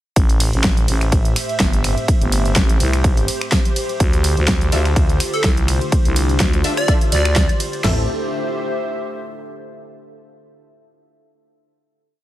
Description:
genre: bass house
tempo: 125 BPM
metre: 4/4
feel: swing 55% on 16ths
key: A minor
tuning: A4 = 439 Hz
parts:
  - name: deep dark ambient pad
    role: sustained chords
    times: 1.3-8.1 s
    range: A3 to F5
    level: -30 LUFS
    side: left 1 dB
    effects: chorus, built-in reverb, sidechain pumping
  - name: growling FM bass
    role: bass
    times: 0.2-8.1 s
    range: G1 to D2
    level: -18 LUFS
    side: equal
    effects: sidechain pumping
  - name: big-room dance drum kit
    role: drums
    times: 0.2-8.0 s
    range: crash cymbal, kick drum, snare drum, toms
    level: -17 LUFS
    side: equal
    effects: overdrive
  - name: big-room dance drum kit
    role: drums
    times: 0.2-7.8 s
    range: finger snaps, hi-hat, ride cymbal, snare drum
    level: -22 LUFS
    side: right 1 dB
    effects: overdrive
  - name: airy breathy pad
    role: texture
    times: 0.2-9.7 s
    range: F4 to E5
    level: -27 LUFS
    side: equal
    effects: chorus, sidechain pumping
  - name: orchestra-hit-like synth stab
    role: stabs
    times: 4.7-8.0 s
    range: C4 to E5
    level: -27 LUFS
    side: left 1 dB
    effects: built-in reverb, phaser, sidechain pumping, dub echo
  - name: plucky unison lead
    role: melody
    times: 5.3-7.6 s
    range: A4 to D5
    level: -24 LUFS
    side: right 1 dB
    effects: dub echo
room: little or no reverb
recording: none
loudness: -15 LUFS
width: side -14 dB against mid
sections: 0.2-7.8 drop; 7.8-9.8 final chord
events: drop 0.2-7.8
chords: 0.2 Am; 4.0 Dmadd9; 7.8 Am

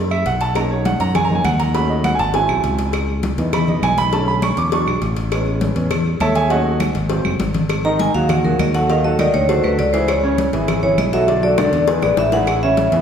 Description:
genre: Afro-Cuban jazz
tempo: 202 BPM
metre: 4/4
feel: straight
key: C# minor, G# minor from 7.7 s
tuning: A4 = 439 Hz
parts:
  - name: fingered electric bass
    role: bass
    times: 0.0-13.0 s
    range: F#1 to F#2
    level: -20 LUFS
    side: equal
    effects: none
  - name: clear concert grand piano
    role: accompaniment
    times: 0.1-13.0 s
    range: C#3 to D6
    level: -20 LUFS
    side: right 2 dB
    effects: none
  - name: claves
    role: percussion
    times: 0.1-12.6 s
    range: none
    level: -31 LUFS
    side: right 4 dB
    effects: none
  - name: congas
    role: percussion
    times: 0.1-13.0 s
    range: none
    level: -25 LUFS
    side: left 2 dB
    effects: none
  - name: cowbell and bongos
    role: percussion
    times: 0.3-13.0 s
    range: none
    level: -25 LUFS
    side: left 3 dB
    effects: none
  - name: vibraphone with medium hard mallets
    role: melody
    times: 7.8-13.0 s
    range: A#4 to A#5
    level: -18 LUFS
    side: left 1 dB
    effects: none
room: wet recital hall reverb, RT60 1.7 s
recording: recorded in a church or concert hall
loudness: -15 LUFS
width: side -8 dB against mid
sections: 0.0-7.7 A section; 7.7-13.0 A section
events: grand piano solo 0.0-7.7; drum fill 7.3-7.7, 11.6-12.5; vibraphone solo 7.7-13.0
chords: 0.0 F#7(no3); 0.6 Bmaj7; 1.7 D#m7b5; 2.3 G#7alt; 2.9 C#m9; 4.1 Bm7; 4.7 E7; 5.3 Amaj9; 6.5 D#m7b5; 7.1 G#aug7; 7.7 G#5; 8.9 D#dim; 9.5 D; 10.1 C#m7; 11.3 Bm7; 11.9 E; 12.5 Amaj7

